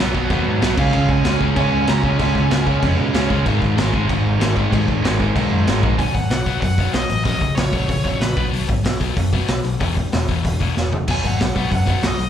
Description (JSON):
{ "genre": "punk rock", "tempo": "189 BPM", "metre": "4/4", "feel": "straight", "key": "B major from 6.0 s", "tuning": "A4 = 441 Hz", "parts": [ { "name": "cranked stack guitar", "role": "riff", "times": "0.0-6.0 s", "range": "G#2 to C#4", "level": "-22 LUFS", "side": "right 12 dB", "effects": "overdrive" }, { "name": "crunchy overdriven guitar", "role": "riff", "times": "0.0-12.3 s", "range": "E2 to C#4", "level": "-23 LUFS", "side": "left 10 dB", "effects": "slapback echo" }, { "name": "picked electric bass", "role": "bass", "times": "0.0-12.3 s", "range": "E1 to C#3", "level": "-21 LUFS", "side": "equal", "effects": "none" }, { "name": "raw garage drum kit", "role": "drums", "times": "0.1-12.3 s", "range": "crash cymbal, hi-hat, kick drum, snare drum, toms", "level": "-21 LUFS", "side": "equal", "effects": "none" }, { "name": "nasal lead guitar with a parked wah", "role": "melody", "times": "0.8-2.9, 6.0-8.5, 11.1-12.3 s", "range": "B4 to A#5", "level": "-25 LUFS", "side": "right 1 dB", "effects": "overdrive, slapback echo" } ], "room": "studio reverb", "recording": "live gig heard through the venue's PA, club reverb", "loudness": "-16 LUFS", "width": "side -9 dB against mid", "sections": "0.0-6.0 A section; 6.0-12.3 B section", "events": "drum fill 10.8-11.1", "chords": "0.0 B; 0.8 C#5; 3.5 G#5; 6.0 B; 7.3 F#/A#; 8.4 B5; 9.8 E5; 11.1 B5" }